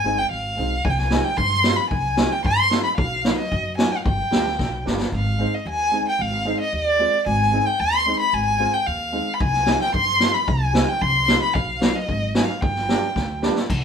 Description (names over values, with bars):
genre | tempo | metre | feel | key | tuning
klezmer | 112 BPM | 2/4 | straight | unclear | A4 = 442 Hz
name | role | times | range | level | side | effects
dark violin | melody | 0.0-13.4 s | D5 to C6 | -21 LUFS | left 1 dB | none
warm upright piano | accompaniment | 0.0-13.6 s | F#3 to F4 | -27 LUFS | right 3 dB | none
upright bass | bass | 0.1-13.8 s | G1 to G2 | -26 LUFS | equal | none
street-band drum kit | drums | 0.8-5.1, 9.4-13.8 s | crash cymbal, kick drum, snare drum | -22 LUFS | equal | none
room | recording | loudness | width
wet studio ambience, RT60 0.5 s | band playing live in one room | -18 LUFS | side -7 dB against mid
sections
0.0-5.1 A section; 5.1-13.7 A section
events
drum fill 4.6-5.1, 13.2-13.7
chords
0.0 Ab; 0.8 Cm; 3.0 B; 4.1 G; 5.1 Ab; 9.4 Cm; 11.6 B; 12.6 G